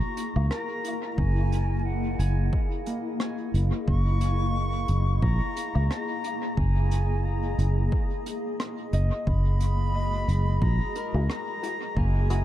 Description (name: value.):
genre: ambient dub.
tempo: 89 BPM.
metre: 4/4.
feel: swing 56% on 16ths.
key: F# mixolydian.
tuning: A4 = 441 Hz.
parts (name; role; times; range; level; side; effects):
concert flute; melody; 0.0-12.4 s; F#5 to C#6; -35 LUFS; left 2 dB; dub echo.
granular cloud pad; sustained chords; 0.0-12.4 s; G#3 to D#5; -33 LUFS; left 1 dB; built-in reverb.
vintage brush drum kit; drums; 0.2-12.4 s; hi-hat, rim click, woodblock; -39 LUFS; right 1 dB; dub echo.
fingered electric bass; bass; 0.4-12.4 s; F#1 to C#2; -23 LUFS; equal; tube saturation.
Celtic harp; arpeggios; 0.5-12.4 s; A#3 to G#5; -39 LUFS; equal; tape echo.
electronic kick drum; drums; 1.2-12.1 s; none; -28 LUFS; equal; overdrive.
filtered dub chord stab; stabs; 11.1-12.4 s; E4 to G#4; -38 LUFS; left 5 dB; chorus, cassette tape, dub echo.
room: small room ambience.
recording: echo-heavy mix.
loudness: -24 LUFS.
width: side -13 dB against mid.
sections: 0.0-12.4 A section.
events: none.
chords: 0.0 F#13.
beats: 0.51 | 1.18 1.85 2.53 3.20 | 3.88 4.55 5.22 5.90 | 6.57 7.25 7.92 8.60 | 9.27 9.94 10.62 11.29 | 11.97.